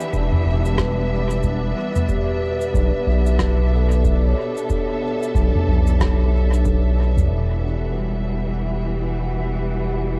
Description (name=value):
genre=ambient dub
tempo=92 BPM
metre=4/4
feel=swing 60% on 16ths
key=E dorian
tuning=A4 = 440 Hz
part: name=warm studio string section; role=sustained chords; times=0.0-10.2 s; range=B2 to E5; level=-29 LUFS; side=equal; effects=cassette tape
part: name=vibraphone with soft mallets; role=arpeggios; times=0.0-10.2 s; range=G3 to A5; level=-30 LUFS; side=equal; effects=low-pass filter, cassette tape, analog delay
part: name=soft-mallet drum kit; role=drums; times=0.0-7.3 s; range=cabasa, rim click, toms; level=-26 LUFS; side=equal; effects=cassette tape, dub echo
part: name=bubbling stepped-filter texture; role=texture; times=0.0-10.2 s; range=D4 to F#5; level=-36 LUFS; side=equal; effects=chorus, built-in reverb, cassette tape
part: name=round analog bass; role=bass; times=0.1-10.2 s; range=E1 to B1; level=-22 LUFS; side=equal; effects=none
part: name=electronic kick drum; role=drums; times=0.1-6.8 s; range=none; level=-27 LUFS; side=equal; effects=cassette tape
room=light reverb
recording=home recording on cassette, lossy compression artefacts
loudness=-20 LUFS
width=mono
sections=0.0-7.3 A section; 7.3-10.2 B section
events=filter sweep on vibraphone 0.0-7.3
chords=0.0 Em7; 2.1 Bm7; 7.3 Em